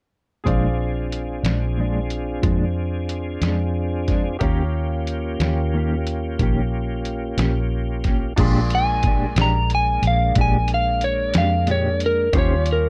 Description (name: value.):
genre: slow blues.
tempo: 61 BPM (dotted quarters).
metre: 12/8.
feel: straight.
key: Bb mixolydian.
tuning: A4 = 440 Hz.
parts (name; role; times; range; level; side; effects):
bright grand piano; accompaniment; 0.4-12.9 s; Db4 to C6; -33 LUFS; equal; none.
mellow electric guitar; accompaniment; 0.4-12.5 s; Bb2 to C5; -28 LUFS; equal; tremolo.
tonewheel organ; sustained chords; 0.4-12.9 s; G3 to Ab4; -31 LUFS; equal; slow rotary speaker, chorus vibrato.
vintage muted fingered electric bass; bass; 0.5-12.9 s; Bb1 to F2; -25 LUFS; equal; none.
lo-fi sampler-style drum kit; drums; 0.5-12.8 s; crash cymbal, hi-hat, kick drum, snare drum; -25 LUFS; equal; none.
electric slide guitar; melody; 8.7-12.9 s; Bb4 to Bb5; -23 LUFS; equal; none.
room: little or no reverb.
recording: dark, warm production.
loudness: -21 LUFS.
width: mono.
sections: 0.5-8.4 A section; 8.4-12.9 B section.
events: none.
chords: 0.5 Bb7; 4.4 Eb7; 8.4 Bb13; 12.3 Eb13.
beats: | 0.46 1.45 2.44 3.42 | 4.41 5.40 6.39 7.38 | 8.37 9.36 10.35 11.34 | 12.33.